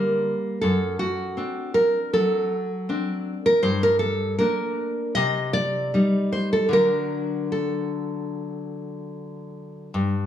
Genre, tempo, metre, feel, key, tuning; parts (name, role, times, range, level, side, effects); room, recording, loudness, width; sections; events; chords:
romantic piece for solo classical guitar; 73-81 BPM; 4/4; rubato; A4 = 441 Hz
nylon-string guitar; solo; 0.0-10.3 s; F#2 to Eb5; -21 LUFS; equal
moderate recital hall reverb, RT60 1.4 s; small room ambience; -21 LUFS; side -10 dB against mid
0.0-10.3 A section
0.0 Gm; 0.6 D7/F#; 3.6 Gm; 5.2 Cm; 6.7 D